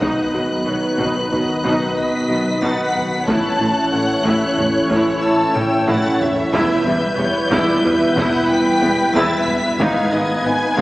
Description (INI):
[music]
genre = cinematic, hybrid orchestral and electronic film score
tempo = 92 BPM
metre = 5/4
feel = straight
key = E dorian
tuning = A4 = 443 Hz
[part]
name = clear studio violin section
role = melody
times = 0.0-10.8 s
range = E6 to B6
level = -26 LUFS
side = left 2 dB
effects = none
[part]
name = rich studio violin section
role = second line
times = 0.0-10.8 s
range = B4 to A5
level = -23 LUFS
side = left 1 dB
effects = none
[part]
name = rich symphonic viola section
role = accompaniment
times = 0.0-10.8 s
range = F#3 to C#5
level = -22 LUFS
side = equal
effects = none
[part]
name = mellow French horn section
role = sustained chords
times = 0.0-10.8 s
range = B3 to E4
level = -22 LUFS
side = equal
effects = none
[part]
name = warm analog pad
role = sustained chords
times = 0.0-10.8 s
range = D#3 to B4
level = -24 LUFS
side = equal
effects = chorus
[part]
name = thumb-piano-like synth pluck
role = arpeggios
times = 0.0-10.8 s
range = E3 to F#4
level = -28 LUFS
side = equal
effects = none
[part]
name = clear studio double bass section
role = bass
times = 0.0-10.8 s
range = E1 to B1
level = -30 LUFS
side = right 1 dB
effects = none
[part]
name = clear symphonic cello section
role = bass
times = 0.0-10.8 s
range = E2 to B2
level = -25 LUFS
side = right 1 dB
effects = none
[part]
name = phased detuned saw bass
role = bass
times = 0.0-10.8 s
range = E1 to B1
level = -33 LUFS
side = equal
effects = none
[part]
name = taiko ensemble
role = drums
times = 0.0-10.8 s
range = none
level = -30 LUFS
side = equal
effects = none
[sound]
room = wet concert hall reverb, RT60 2.4 s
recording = heard from further back in the room, small speaker sound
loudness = -15 LUFS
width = side -18 dB against mid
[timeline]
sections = 0.0-10.8 A section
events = drum fill 5.6-6.5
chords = 0.0 B; 3.3 A; 6.5 Em; 9.8 G#m